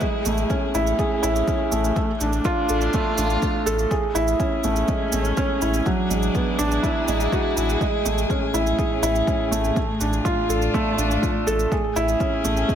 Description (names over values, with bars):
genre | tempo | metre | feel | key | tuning
piano and strings electronica | 123 BPM | 4/4 | straight | A major | A4 = 438 Hz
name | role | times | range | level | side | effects
warm string quartet | sustained chords | 0.0-12.8 s | A2 to G#4 | -28 LUFS | left 1 dB | none
felt-muted upright piano | riff | 0.0-12.8 s | F#3 to A4 | -22 LUFS | right 1 dB | ping-pong delay
electronic kick drum | drums | 0.0-12.8 s | none | -26 LUFS | left 1 dB | none
shaker | drums | 0.0-12.8 s | none | -33 LUFS | right 6 dB | none
warm sub bass | bass | 0.3-12.6 s | A1 | -25 LUFS | left 1 dB | sidechain pumping
room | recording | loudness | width
moderate scoring stage reverb, RT60 1.8 s | none | -19 LUFS | side -9 dB against mid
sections
0.0-12.8 A section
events
none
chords
0.0 Amaj7; 2.0 Dm/A; 3.9 Amaj7; 5.9 E9/A; 7.8 Amaj7; 9.8 Dm/A; 11.7 Amaj7